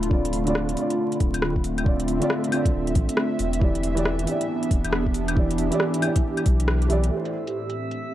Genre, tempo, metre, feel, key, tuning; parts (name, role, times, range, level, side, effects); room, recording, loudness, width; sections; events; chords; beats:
future garage; 137 BPM; 4/4; swing 62% on 16ths; A4 = 439 Hz
dark upright piano; accompaniment; 0.0-8.1 s; B2 to D5; -27 LUFS; right 1 dB; sidechain pumping, analog delay
airy breathy pad; sustained chords; 0.0-8.1 s; A2 to B5; -26 LUFS; equal; chorus, sidechain pumping
warm sub bass; bass; 0.0-7.1 s; D1 to B1; -26 LUFS; equal
organic electronic drum kit; drums; 0.0-8.0 s; claves, hi-hat, rim click; -28 LUFS; left 1 dB; low-pass filter on hats, low-pass filter on snare, low-pass filter on perc, low-pass filter on room
electronic kick drum; drums; 0.1-6.6 s; -22 LUFS; equal
drifting glass-harmonics texture; texture; 7.3-8.1 s; E5; -36 LUFS; right 4 dB; chorus, built-in reverb
light reverb, digital ambience; vinyl crackle; -21 LUFS; side -13 dB against mid
0.0-7.1 A section; 7.1-8.1 B section
band accent 6.7; filter sweep on analog synth pad 7.1-8.1
0.1 Dm7; 3.6 Em7; 7.1 Am7
| 0.11 0.55 0.99 1.43 | 1.86 2.30 2.74 3.18 | 3.62 4.05 4.49 4.93 | 5.37 5.80 6.24 6.68 | 7.12 7.56 8.00